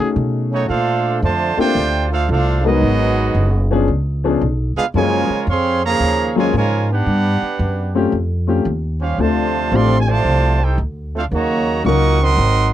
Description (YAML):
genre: jazz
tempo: 113 BPM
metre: 4/4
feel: swing 67% on 8ths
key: unclear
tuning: A4 = 443 Hz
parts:
  - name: warm baby grand piano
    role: accompaniment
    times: 0.0-12.2 s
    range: F3 to Bb4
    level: -19 LUFS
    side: left 5 dB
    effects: none
  - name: upright bass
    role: bass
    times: 0.2-12.7 s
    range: Gb1 to B2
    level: -18 LUFS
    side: equal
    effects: none
  - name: bright trumpet section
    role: melody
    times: 0.5-12.7 s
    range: A3 to Db6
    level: -19 LUFS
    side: right 4 dB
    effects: none
  - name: clear trombone section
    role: second line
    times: 0.5-12.7 s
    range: C3 to G4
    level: -22 LUFS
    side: right 3 dB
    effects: none
room: light reverb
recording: dry, close 1970s-style studio recording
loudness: -15 LUFS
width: side -12 dB against mid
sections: 0.7-12.7 A section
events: none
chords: 0.0 B13; 0.7 Bbmaj9; 2.8 Abm7; 3.9 Db7b9; 4.9 Gbmaj9; 7.1 Gmaj9#11; 8.1 A7alt; 9.2 Dm7; 11.3 Ebm7